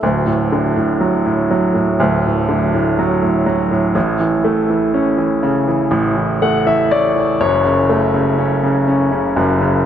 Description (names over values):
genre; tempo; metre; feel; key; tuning
pop; 61 BPM; 4/4; straight; D major; A4 = 438 Hz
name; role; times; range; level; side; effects
clear grand piano; solo; 0.0-9.9 s; D1 to F#5; -13 LUFS; equal; digital delay
room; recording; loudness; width
moderate concert hall reverb, RT60 2.2 s; none; -13 LUFS; side -9 dB against mid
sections
0.0-9.9 A section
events
grand piano fill 5.9-7.9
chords
0.0 D; 4.0 A; 7.4 F#m